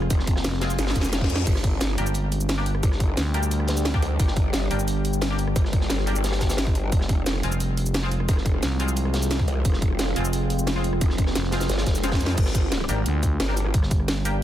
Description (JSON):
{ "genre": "dark technical drum and bass", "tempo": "176 BPM", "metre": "4/4", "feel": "straight", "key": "unclear", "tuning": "A4 = 441 Hz", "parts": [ { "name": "deep dark ambient pad", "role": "sustained chords", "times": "0.0-14.4 s", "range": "G3 to G4", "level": "-31 LUFS", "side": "equal", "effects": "chorus, built-in reverb, sidechain pumping" }, { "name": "growling FM bass", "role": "bass", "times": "0.0-14.4 s", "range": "F1 to D2", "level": "-24 LUFS", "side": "equal", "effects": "none" }, { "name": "drum and bass drum kit", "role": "drums", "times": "0.0-14.3 s", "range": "crash cymbal, hi-hat, rim click, shaker, snare drum", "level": "-29 LUFS", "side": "equal", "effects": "overdrive" }, { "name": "growl bass", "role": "bass", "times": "0.1-13.7 s", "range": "F1 to F2", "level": "-26 LUFS", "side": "equal", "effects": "chorus, sidechain pumping" }, { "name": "crunchy breakbeat drum kit", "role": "drums", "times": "0.1-14.3 s", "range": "hi-hat, snare drum", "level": "-34 LUFS", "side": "equal", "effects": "high-pass filter on hats, high-pass filter on snare, high-pass filter on room" }, { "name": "electronic kick drum", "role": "drums", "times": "0.1-14.0 s", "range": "none", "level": "-22 LUFS", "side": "equal", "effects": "overdrive" }, { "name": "band-passed chord stab", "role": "stabs", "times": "0.6-14.3 s", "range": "Ab3 to G4", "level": "-33 LUFS", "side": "left 2 dB", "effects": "wide subtle chorus, digital delay" }, { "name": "reverse cymbal", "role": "sound effects", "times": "1.0-1.5 s", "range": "none", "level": "-35 LUFS", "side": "left 7 dB", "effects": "none" } ], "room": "digital ambience", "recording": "dense, heavily limited modern master", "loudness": "-21 LUFS", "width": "side -12 dB against mid", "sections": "0.0-12.4 A section; 12.4-14.4 A section", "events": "drop 0.0-12.4, 12.4-14.4; drum fill 0.8-1.5, 12.0-12.4; reverse cymbal 1.0-1.5", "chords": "0.0 Fm; 1.5 Gm; 6.9 Fm; 12.4 Gm", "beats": "| 0.10 0.45 0.79 1.13 | 1.47 1.81 2.15 2.49 | 2.83 3.17 3.51 3.85 | 4.20 4.54 4.88 5.22 | 5.56 5.90 6.24 6.58 | 6.92 7.26 7.60 7.95 | 8.29 8.63 8.97 9.31 | 9.65 9.99 10.33 10.67 | 11.01 11.35 11.70 12.04 | 12.38 12.72 13.06 13.40 | 13.74 14.08 14.42" }